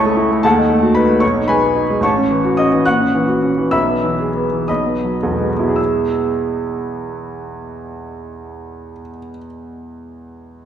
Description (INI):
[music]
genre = classical, romantic character piece for solo piano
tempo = 52-78 BPM (dotted quarters)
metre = 6/8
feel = rubato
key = E major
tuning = A4 = 438 Hz
[part]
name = clear baby grand piano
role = solo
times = 0.0-10.7 s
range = A1 to F#6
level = -15 LUFS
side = equal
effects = none
[sound]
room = wet recital hall reverb, RT60 1.4 s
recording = dark, warm production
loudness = -14 LUFS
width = side -9 dB against mid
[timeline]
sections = 0.0-5.8 A section; 5.8-10.0 B section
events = slowing down 1.2-5.8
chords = 0.4 D#dim; 1.2 G#m/B; 2.0 F#m7/A; 2.9 F#7/A#; 3.7 E/B; 4.7 B7; 5.8 E